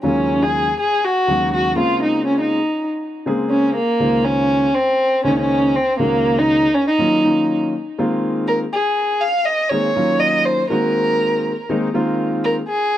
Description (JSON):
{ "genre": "jazz", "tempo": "121 BPM", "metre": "4/4", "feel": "swing 54% on 16ths", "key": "unclear", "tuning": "A4 = 440 Hz", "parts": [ { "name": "dark violin", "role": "melody", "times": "0.0-13.0 s", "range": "Bb3 to F5", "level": "-17 LUFS", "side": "equal", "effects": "none" }, { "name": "warm concert grand piano", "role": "accompaniment", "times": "0.0-12.6 s", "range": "Db2 to C5", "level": "-20 LUFS", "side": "left 1 dB", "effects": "none" } ], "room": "little or no reverb", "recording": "dry, close 1970s-style studio recording", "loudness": "-15 LUFS", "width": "side -12 dB against mid", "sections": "0.0-8.0 A section; 8.0-13.0 B section", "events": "none", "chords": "0.0 Ebm11; 1.8 Bbm9/Db; 4.0 Dbmaj13; 6.0 Gb69/Db; 7.0 Ebm9; 8.0 Bb9sus4; 10.0 Ebm9; 10.7 Ab9; 11.9 Bb9sus4", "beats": "| 0.03 0.52 1.02 1.52 | 2.02 2.51 3.01 3.51 | 4.01 4.50 5.00 5.50 | 6.00 6.49 6.99 7.49 | 7.98 8.48 8.97 9.47 | 9.96 10.46 10.96 11.45 | 11.94 12.44 12.93" }